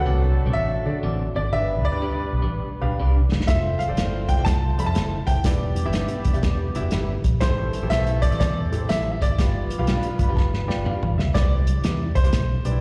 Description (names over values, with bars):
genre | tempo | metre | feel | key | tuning
uptempo 1960s-style soul | 122 BPM | 4/4 | swing 65% on 8ths | C major | A4 = 439 Hz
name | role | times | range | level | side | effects
clear baby grand piano | melody | 0.0-12.8 s | C5 to B5 | -30 LUFS | equal | none
dark horn section | second line | 0.0-11.1 s | E3 to D5 | -35 LUFS | equal | none
clear concert grand piano | accompaniment | 0.0-12.8 s | D4 to B5 | -35 LUFS | equal | slapback echo
vintage muted fingered electric bass | bass | 0.0-12.8 s | E1 to D3 | -25 LUFS | equal | none
electric guitar through a small old amp | stabs | 0.1-12.3 s | C4 to F5 | -38 LUFS | equal | analog chorus, slapback echo
warm soul drum kit | drums | 3.3-12.7 s | hi-hat, kick drum, snare drum, toms | -26 LUFS | equal | none
congas | percussion | 3.6-12.8 s | none | -38 LUFS | equal | none
room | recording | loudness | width
light reverb, small room ambience | live gig heard through the venue's PA, recital hall reverb | -22 LUFS | mono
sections
0.0-11.3 A section; 11.3-12.8 B section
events
drum fill 2.5-3.5, 10.4-11.3; grand piano fill 9.9-11.3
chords
0.0 D7; 1.5 G; 3.5 Fmaj7; 5.4 Em7; 7.4 Am7; 9.4 G7; 11.3 Cmaj7